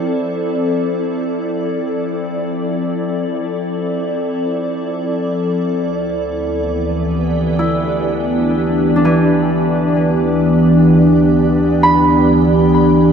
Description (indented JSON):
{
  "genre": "ambient",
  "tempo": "free time",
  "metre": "none",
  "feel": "none",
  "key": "unclear",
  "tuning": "A4 = 440 Hz",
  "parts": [
    { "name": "glassy FM pad", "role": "sustained chords", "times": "0.0-13.1 s", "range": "D2 to D5", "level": "-14 LUFS", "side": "equal", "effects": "ensemble chorus, built-in reverb" },
    { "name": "Celtic harp", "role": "arpeggios", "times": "7.6-13.1 s", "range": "E3 to B5", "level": "-18 LUFS", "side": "equal", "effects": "ping-pong delay" }
  ],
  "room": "wet cathedral reverb, RT60 5.3 s",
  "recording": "in a vast, echoing space",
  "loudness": "-13 LUFS",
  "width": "side -7 dB against mid",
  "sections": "0.0-13.1 A section",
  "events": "none",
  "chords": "0.0 Dm9; 5.8 Em7/D",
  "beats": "free time"
}